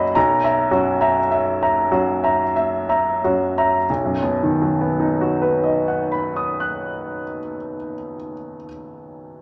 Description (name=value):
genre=classical, romantic character piece for solo piano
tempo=42-56 BPM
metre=3/4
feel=rubato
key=B major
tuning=A4 = 440 Hz
part: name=clear grand piano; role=solo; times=0.0-9.4 s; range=B1 to F#6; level=-21 LUFS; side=equal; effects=none
room=wet large studio reverb, RT60 1.4 s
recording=none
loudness=-20 LUFS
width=mono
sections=0.0-3.9 A section; 3.9-7.2 B section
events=slowing down 0.0-3.9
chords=0.2 F#7/B; 3.9 B